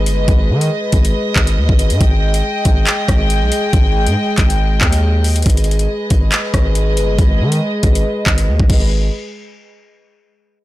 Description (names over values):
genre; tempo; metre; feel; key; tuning
hip hop, drill; 139 BPM; 4/4; half-time; G# harmonic minor; A4 = 441 Hz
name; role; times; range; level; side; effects
warm symphonic string section; sustained chords; 0.0-8.9 s; G#3 to G5; -20 LUFS; left 1 dB; low-pass filter
distorted 808-style bass; bass; 0.0-9.1 s; G1 to D#3; -15 LUFS; equal; distortion
drill drum kit; drums; 0.1-8.8 s; crash cymbal, handclaps, hi-hat, kick drum, rim click; -15 LUFS; equal; none
room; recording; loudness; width
little or no reverb; blown-out, overdriven recording, overdrive; -12 LUFS; side -16 dB against mid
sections
0.0-5.5 A section; 5.5-8.9 B section; 8.9-10.6 C section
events
filter sweep on string section 5.5-8.9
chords
0.0 G#m; 2.0 D#/G#; 5.5 G#m; 8.9 N.C.